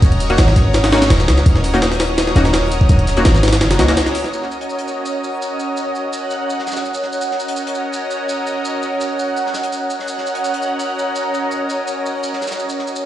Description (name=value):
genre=drum and bass, jungle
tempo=167 BPM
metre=4/4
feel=straight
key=Eb minor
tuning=A4 = 441 Hz
part: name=lush unison pad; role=sustained chords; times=0.0-13.1 s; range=Db4 to Eb5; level=-21 LUFS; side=equal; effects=chorus
part: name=warm 808-style bass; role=bass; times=0.0-4.0 s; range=Eb1 to Db2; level=-15 LUFS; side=equal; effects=none
part: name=jungle sampler-style drum kit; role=drums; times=0.0-4.3 s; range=hi-hat, kick drum, snare drum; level=-15 LUFS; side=equal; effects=none
part: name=warm soul drum kit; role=drums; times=0.0-13.0 s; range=hi-hat, shaker, snare drum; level=-30 LUFS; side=equal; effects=high-pass filter on hats, high-pass filter on snare, high-pass filter on perc, high-pass filter on room
part: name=backwards swelling texture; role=texture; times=0.0-13.1 s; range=Db5 to Gb6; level=-26 LUFS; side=right 2 dB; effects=built-in reverb
part: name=filtered dub chord stab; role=stabs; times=0.3-4.0 s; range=Bb3 to Gb4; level=-21 LUFS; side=left 1 dB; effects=chorus, dub echo
room=moderate echo chamber reverb, RT60 1.4 s, studio ambience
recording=played on a big sound system in a bare room, stone room reverb, vinyl crackle, nothing above 10.6 kHz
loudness=-15 LUFS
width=side -13 dB against mid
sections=0.0-4.3 A section; 4.3-13.1 B section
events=drop 0.0-4.3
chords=0.0 Ebm7